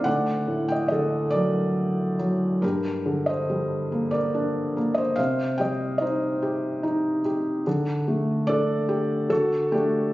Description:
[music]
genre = classical, lyrical solo piano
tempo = 72 BPM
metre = 3/4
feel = rubato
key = unclear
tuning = A4 = 440 Hz
[part]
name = felt-muted upright piano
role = solo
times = 0.0-10.1 s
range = D2 to G5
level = -22 LUFS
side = equal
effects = none
[sound]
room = light reverb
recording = recorded on a phone in the room, studio reverb, nothing above 7.5 kHz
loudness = -22 LUFS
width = side -17 dB against mid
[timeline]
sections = 0.0-10.1 A section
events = none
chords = 0.1 D; 2.6 Gm; 5.2 Cm; 7.7 Dsus4; 9.3 D

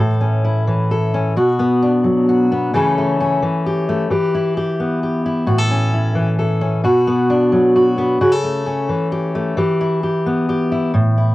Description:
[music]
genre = folk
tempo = 132 BPM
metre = 3/4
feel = straight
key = A mixolydian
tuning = A4 = 439 Hz
[part]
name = fingerpicked steel-string acoustic guitar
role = solo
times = 0.0-11.3 s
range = A2 to A4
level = -14 LUFS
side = equal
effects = cassette tape
[sound]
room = wet booth ambience, RT60 0.2 s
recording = home recording on cassette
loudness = -14 LUFS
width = side -17 dB against mid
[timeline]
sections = 0.0-10.9 A section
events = none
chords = 0.0 A; 1.4 Bm; 2.7 A/C#; 4.1 Em; 5.5 A; 6.8 Bm; 8.2 A/C#; 9.6 Em

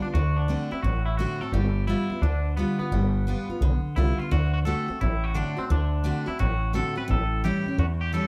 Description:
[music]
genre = rockabilly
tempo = 173 BPM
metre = 4/4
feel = swing 65% on 8ths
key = D mixolydian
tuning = A4 = 440 Hz
[part]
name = twangy electric guitar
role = melody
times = 0.0-8.3 s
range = B3 to B4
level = -34 LUFS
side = equal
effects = spring reverb, tape echo
[part]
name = picked steel-string acoustic guitar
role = accompaniment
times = 0.0-8.3 s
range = E2 to F#4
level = -31 LUFS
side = equal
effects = none
[part]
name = upright bass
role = bass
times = 0.0-8.2 s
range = G1 to E2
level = -27 LUFS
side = equal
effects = none
[sound]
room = light reverb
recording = none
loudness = -26 LUFS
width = mono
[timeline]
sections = 0.0-8.3 A section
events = none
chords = 0.1 D7; 1.5 G7; 4.3 D7; 7.1 A7

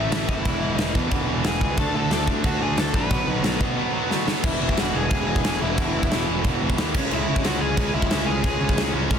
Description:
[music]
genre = punk rock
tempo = 180 BPM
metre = 4/4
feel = straight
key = E major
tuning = A4 = 439 Hz
[part]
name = high-gain lead guitar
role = melody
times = 0.0-8.9 s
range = E4 to B5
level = -28 LUFS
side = left 3 dB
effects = distortion
[part]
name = tight distorted guitar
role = riff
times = 0.0-9.2 s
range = E2 to D4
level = -29 LUFS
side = left 16 dB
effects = distortion
[part]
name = tight distorted guitar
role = riff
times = 0.0-9.2 s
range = E2 to D4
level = -28 LUFS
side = right 15 dB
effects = distortion
[part]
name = fuzz picked electric bass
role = bass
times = 0.0-9.2 s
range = E1 to B2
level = -27 LUFS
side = equal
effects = overdrive
[part]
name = big rock drum kit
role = drums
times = 0.1-9.2 s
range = crash cymbal, kick drum, snare drum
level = -24 LUFS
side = equal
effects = soft clipping on kick, soft clipping on snare
[sound]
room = little or no reverb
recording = dense, heavily limited modern master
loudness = -20 LUFS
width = side -8 dB against mid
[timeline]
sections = 0.0-4.4 A section; 4.4-9.2 B section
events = drum fill 4.1-4.4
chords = 0.5 E; 1.8 D; 3.1 B5; 4.4 E; 6.9 C#m

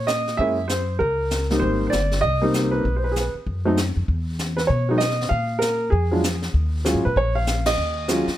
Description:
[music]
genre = jazz piano trio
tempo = 195 BPM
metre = 4/4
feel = swing 61% on 8ths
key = Eb minor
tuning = A4 = 436 Hz
[part]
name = warm grand piano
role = melody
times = 0.0-8.4 s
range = F#3 to F5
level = -21 LUFS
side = right 1 dB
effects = none
[part]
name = upright bass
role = bass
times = 0.0-8.3 s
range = G1 to B2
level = -24 LUFS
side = equal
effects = none
[part]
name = jazz brush drum kit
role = drums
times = 0.1-8.4 s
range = brushed snare drum, hi-hat, kick drum, ride cymbal, snare drum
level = -28 LUFS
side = left 2 dB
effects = none
[sound]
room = little or no reverb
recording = none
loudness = -19 LUFS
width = side -13 dB against mid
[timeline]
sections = 0.0-8.4 A section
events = band accent 7.6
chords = 0.4 Gb7; 1.6 Abmaj9; 2.8 B5; 4.1 Emaj7(no3); 5.3 Bb7(no3); 6.5 Eb7sus2

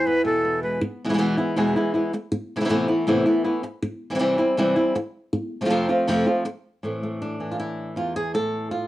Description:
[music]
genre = flamenco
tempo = 159 BPM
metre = 4/4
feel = straight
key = unclear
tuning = A4 = 441 Hz
[part]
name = flamenco guitar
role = melody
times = 0.0-8.9 s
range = E2 to A4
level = -21 LUFS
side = equal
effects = cassette tape
[part]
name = breathy silver concert flute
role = second line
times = 0.0-0.8 s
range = A4 to B4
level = -22 LUFS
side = equal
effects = cassette tape
[sound]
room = moderate studio reverb, RT60 0.6 s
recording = home recording on cassette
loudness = -21 LUFS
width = side -15 dB against mid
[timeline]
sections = 0.8-6.8 A section; 6.8-8.9 B section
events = none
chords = 0.0 E; 2.3 Amadd9; 3.8 C; 5.3 F; 6.8 A5

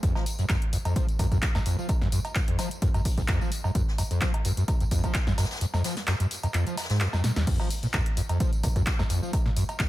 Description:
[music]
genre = acid house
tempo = 129 BPM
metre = 4/4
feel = swing 53% on 16ths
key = F phrygian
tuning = A4 = 440 Hz
[part]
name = overdriven acid bass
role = riff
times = 0.0-9.8 s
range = Eb2 to F3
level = -27 LUFS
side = equal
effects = distortion, tube saturation, ensemble chorus, sidechain pumping
[part]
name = electronic kick drum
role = drums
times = 0.0-9.9 s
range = none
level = -26 LUFS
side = equal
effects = none
[part]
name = jazz brush drum kit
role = drums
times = 0.0-9.9 s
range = hi-hat, snare drum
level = -41 LUFS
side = left 2 dB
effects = sidechain pumping on hats, high-pass filter on hats, high-pass filter on snare, high-pass filter on room
[part]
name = punchy analog drum machine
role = drums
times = 0.0-9.9 s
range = cowbell, crash cymbal, handclaps, hi-hat, snare drum, tambourine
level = -32 LUFS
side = equal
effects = overdrive
[sound]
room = little or no reverb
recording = none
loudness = -24 LUFS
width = side -16 dB against mid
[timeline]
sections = 0.0-9.9 A section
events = kick drops out 5.6-7.5; drum fill 7.1-7.5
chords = none

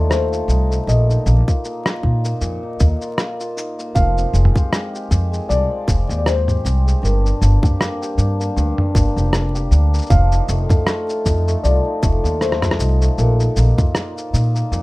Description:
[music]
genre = folktronica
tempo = 78 BPM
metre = 4/4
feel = swing 56% on 16ths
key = unclear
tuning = A4 = 440 Hz
[part]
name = felt-muted upright piano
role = melody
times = 0.0-14.3 s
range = Bb4 to F5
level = -25 LUFS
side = left 2 dB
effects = ping-pong delay
[part]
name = hammered dulcimer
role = arpeggios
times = 0.0-14.8 s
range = G2 to G4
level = -24 LUFS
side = left 1 dB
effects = ping-pong delay
[part]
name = upright bass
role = bass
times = 0.0-14.8 s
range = F1 to Bb2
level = -16 LUFS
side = equal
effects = none
[part]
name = lo-fi sampler-style drum kit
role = drums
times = 0.1-14.8 s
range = rim click, shaker, toms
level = -22 LUFS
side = equal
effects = none
[part]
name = electronic kick drum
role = drums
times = 1.5-13.9 s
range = none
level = -16 LUFS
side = equal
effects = none
[sound]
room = light reverb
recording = rough home demo mix, vinyl crackle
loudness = -15 LUFS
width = side -21 dB against mid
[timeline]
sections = 0.0-14.8 A section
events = break 3.2-4.0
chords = 0.0 F7; 0.9 Bbsus4; 4.0 Fmadd9; 7.0 Gm; 10.1 F7; 13.2 Bbsus4

